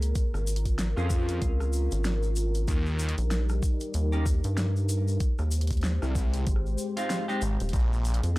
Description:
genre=glitch hop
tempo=95 BPM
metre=4/4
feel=swing 59% on 16ths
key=unclear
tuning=A4 = 440 Hz
part: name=dark analog pad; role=sustained chords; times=0.0-8.4 s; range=G3 to C5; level=-35 LUFS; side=left 1 dB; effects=chorus, sidechain pumping
part: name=rubbery square bass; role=bass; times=0.0-8.4 s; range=Eb1 to G2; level=-26 LUFS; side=equal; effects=none
part: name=pop drum kit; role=drums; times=0.0-8.4 s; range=hi-hat, rim click, snare drum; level=-35 LUFS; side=equal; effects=overdrive
part: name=tube shaker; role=percussion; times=0.0-8.3 s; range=none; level=-42 LUFS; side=left 3 dB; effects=none
part: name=electronic kick drum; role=drums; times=0.2-7.9 s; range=none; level=-27 LUFS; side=equal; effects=overdrive
part: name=clean electric guitar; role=stabs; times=1.0-7.4 s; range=Ab3 to Ab4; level=-36 LUFS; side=equal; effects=sidechain pumping, tape echo
part: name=phased detuned saw bass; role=bass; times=1.0-8.2 s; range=Ab1 to F2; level=-27 LUFS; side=equal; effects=phaser
room=digital ambience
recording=dry, gritty hardware recording, transformer saturation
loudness=-25 LUFS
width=side -19 dB against mid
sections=0.0-8.4 A section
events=none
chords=0.2 Dbmaj7; 2.7 Eb; 5.2 Abmaj7; 7.7 Bb7(no3)

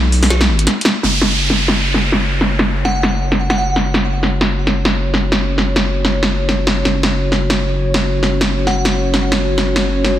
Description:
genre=half-time drum and bass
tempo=165 BPM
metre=4/4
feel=swing 57% on 16ths, half-time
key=unclear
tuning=A4 = 440 Hz
part: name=saturated sub bass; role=bass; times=0.0-10.2 s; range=F#1 to B1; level=-18 LUFS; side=equal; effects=none
part: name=drum and bass drum kit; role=drums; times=0.1-10.1 s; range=hi-hat, snare drum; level=-16 LUFS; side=equal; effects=low-pass filter on snare, low-pass filter on hats, low-pass filter on room
part: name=dark analog pad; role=sustained chords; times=1.0-10.2 s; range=C#4 to C#5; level=-23 LUFS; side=equal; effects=chorus, vintage 12-bit sampler grit
part: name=downlifter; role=sound effects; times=1.0-3.9 s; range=none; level=-20 LUFS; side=right 1 dB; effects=none
part: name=glassy synth bell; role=melody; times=2.8-3.6, 8.7-8.9 s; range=F#5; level=-23 LUFS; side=equal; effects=chorus, vintage 12-bit sampler grit, digital delay
room=moderate echo chamber reverb, RT60 1.6 s, digital ambience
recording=heavily compressed radio sound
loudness=-13 LUFS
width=side -12 dB against mid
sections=0.0-1.0 A section; 1.0-10.2 B section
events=filter sweep on drum 1.0-10.2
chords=0.0 N.C.; 1.0 F#5

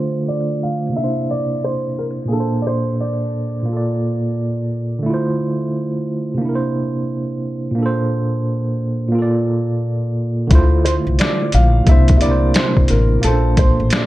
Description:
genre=lo-fi hip hop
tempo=88 BPM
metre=4/4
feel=swing 63% on 16ths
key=unclear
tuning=A4 = 440 Hz
part: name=dark upright piano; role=melody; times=0.0-4.7, 10.8-14.1 s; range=G#4 to F5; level=-23 LUFS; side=equal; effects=low-pass filter, dub echo
part: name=tine electric piano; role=accompaniment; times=0.0-14.1 s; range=Bb2 to D5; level=-19 LUFS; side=right 1 dB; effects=overdrive, medium tremolo, low-pass filter
part: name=upright bass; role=bass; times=10.5-13.9 s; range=A1 to D2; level=-15 LUFS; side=equal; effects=none
part: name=trip hop sampler-style drum kit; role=drums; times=10.5-14.1 s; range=finger snaps, hi-hat, kick drum, snare drum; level=-14 LUFS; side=equal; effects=overdrive
room=light reverb, digital ambience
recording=echo-heavy mix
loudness=-15 LUFS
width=side -16 dB against mid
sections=0.0-10.5 A section; 10.5-14.1 B section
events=filter sweep 0.0-10.5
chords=0.0 Dm7; 1.0 C7; 2.3 Bbmaj7; 5.1 Dm7; 6.4 C7; 7.8 Bbmaj7; 10.5 Dm7; 11.9 C7; 13.2 Bbmaj7

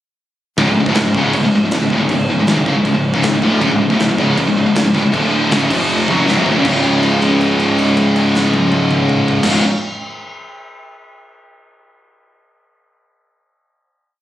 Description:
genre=heavy metal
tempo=158 BPM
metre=4/4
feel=straight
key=unclear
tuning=A4 = 442 Hz
part: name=fuzz guitar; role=riff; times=0.6-9.6 s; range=C#2 to E#4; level=-18 LUFS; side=equal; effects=distortion
part: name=tight distorted guitar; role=riff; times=0.6-9.6 s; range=C#2 to F#3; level=-16 LUFS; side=equal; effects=distortion
part: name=fuzz picked electric bass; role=bass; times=0.6-9.6 s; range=C#1 to G#1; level=-18 LUFS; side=equal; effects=overdrive
part: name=modern studio drum kit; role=drums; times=0.6-9.5 s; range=crash cymbal, kick drum, snare drum, toms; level=-21 LUFS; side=equal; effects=none
room=studio reverb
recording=recorded on a phone in the room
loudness=-12 LUFS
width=side -13 dB against mid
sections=0.6-6.7 riff; 6.7-9.7 final chord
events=drum fill 6.3-6.7; held note 6.7-9.4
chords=0.6 C#5; 5.1 D5; 5.5 C#5; 5.7 F5; 6.1 C#

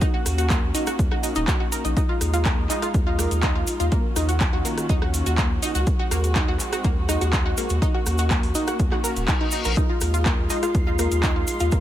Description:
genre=progressive house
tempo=123 BPM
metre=4/4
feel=straight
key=unclear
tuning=A4 = 440 Hz
part: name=dark chamber string section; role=sustained chords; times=0.0-11.8 s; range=Eb3 to Gb4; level=-30 LUFS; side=left 1 dB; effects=sidechain pumping
part: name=wide unison pluck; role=arpeggios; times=0.0-11.8 s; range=Bb3 to Bb5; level=-27 LUFS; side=equal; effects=cassette tape, sidechain pumping, digital delay
part: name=deep house drum kit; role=drums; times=0.0-11.8 s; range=handclaps, hi-hat, rim click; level=-30 LUFS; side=equal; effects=overdrive
part: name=electronic kick drum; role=drums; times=0.0-11.8 s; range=none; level=-23 LUFS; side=equal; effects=overdrive
part: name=cabasa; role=percussion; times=0.0-11.8 s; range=none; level=-33 LUFS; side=right 4 dB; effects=none
part: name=saturated sub bass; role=bass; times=0.3-11.7 s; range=Eb1 to Eb2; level=-24 LUFS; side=equal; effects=sidechain pumping
part: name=reverse cymbal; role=sound effects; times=9.1-9.8 s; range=none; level=-33 LUFS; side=left 6 dB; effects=none
part: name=backwards swelling texture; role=texture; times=10.5-11.8 s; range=C6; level=-37 LUFS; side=right 3 dB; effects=built-in reverb, sidechain pumping
room=little or no reverb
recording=none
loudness=-20 LUFS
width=side -12 dB against mid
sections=0.0-11.8 A section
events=reverse cymbal 9.1-9.8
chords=0.0 Gb/Eb; 2.0 Fm7/Eb; 3.9 Ebm7; 5.9 Ab7/Eb; 7.8 Gb/Eb; 9.8 Fm7/Eb

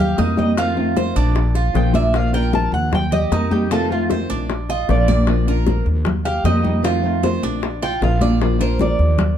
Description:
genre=latin, Cuban son and guajira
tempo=153 BPM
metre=4/4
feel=straight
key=Bb major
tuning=A4 = 440 Hz
part: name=Cuban tres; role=melody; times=0.0-9.4 s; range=F4 to A5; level=-23 LUFS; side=right 1 dB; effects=plate reverb
part: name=Cuban tres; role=arpeggios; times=0.0-9.0 s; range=D4 to D5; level=-25 LUFS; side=right 5 dB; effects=none
part: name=upright bass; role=bass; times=0.0-9.4 s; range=Bb1 to F2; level=-19 LUFS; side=equal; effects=none
part: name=congas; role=percussion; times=0.0-9.4 s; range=none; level=-24 LUFS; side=equal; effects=none
part: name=nylon-string guitar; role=accompaniment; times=0.2-9.2 s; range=C3 to G4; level=-23 LUFS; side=left 2 dB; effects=none
part: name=bongos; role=percussion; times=0.2-9.4 s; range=none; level=-26 LUFS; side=left 6 dB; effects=none
room=light reverb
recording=dark, warm production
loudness=-16 LUFS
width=side -9 dB against mid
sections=0.0-9.4 A section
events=Cuban tres solo 0.0-9.4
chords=0.0 Eb; 0.6 F7; 1.4 Bb; 2.9 Eb; 3.7 F7; 4.5 Bb; 6.1 Eb; 6.8 F7; 7.6 Bb

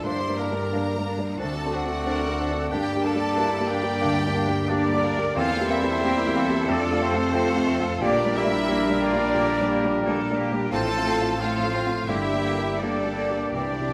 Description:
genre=classical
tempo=79-93 BPM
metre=4/4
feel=rubato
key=unclear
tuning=A4 = 441 Hz
part: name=rich studio violin section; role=melody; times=0.0-13.9 s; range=C5 to C6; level=-36 LUFS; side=equal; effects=none
part: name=warm concert grand piano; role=melody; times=0.0-13.9 s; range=C2 to Bb4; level=-29 LUFS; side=equal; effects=none
part: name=bright clarinet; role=second line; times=0.0-13.7 s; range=Bb3 to D4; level=-35 LUFS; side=equal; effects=none
part: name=mellow concert flute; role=second line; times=0.0-13.9 s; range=C5 to C6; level=-36 LUFS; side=equal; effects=none
part: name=mellow cor anglais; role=second line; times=0.0-13.9 s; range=C4 to C5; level=-35 LUFS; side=equal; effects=none
part: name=rich studio violin section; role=second line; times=0.0-13.9 s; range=C4 to C5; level=-37 LUFS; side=equal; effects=none
part: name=warm studio viola section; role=accompaniment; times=0.0-13.9 s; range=D3 to G4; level=-39 LUFS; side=equal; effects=none
part: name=clear trombone section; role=sustained chords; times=0.0-13.9 s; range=G2 to A3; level=-38 LUFS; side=equal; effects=none
part: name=mellow French horn section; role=sustained chords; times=0.0-13.9 s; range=G3 to F4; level=-36 LUFS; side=equal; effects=none
part: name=clear trumpet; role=stabs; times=0.0-13.9 s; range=G4 to D5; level=-34 LUFS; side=equal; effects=none
part: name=rich chamber double bass section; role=bass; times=0.0-13.9 s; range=G1 to G2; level=-35 LUFS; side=equal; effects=none
part: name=rich studio cello section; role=bass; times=0.0-13.9 s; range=D4 to Bb4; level=-36 LUFS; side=equal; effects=none
part: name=mellow bassoon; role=accompaniment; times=0.1-13.7 s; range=D3 to C4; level=-37 LUFS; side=equal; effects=none
part: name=timpani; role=percussion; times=13.6-13.9 s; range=C3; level=-41 LUFS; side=equal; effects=none
room=moderate concert hall reverb, RT60 2.1 s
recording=close, detailed microphones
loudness=-24 LUFS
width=mono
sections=0.0-13.9 A section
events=timpani fill 13.5-13.9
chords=0.0 Gm; 1.4 D7; 2.7 Gm; 5.4 C7/E; 6.7 F; 8.0 Gm/Bb; 10.7 F/A; 12.1 Gm

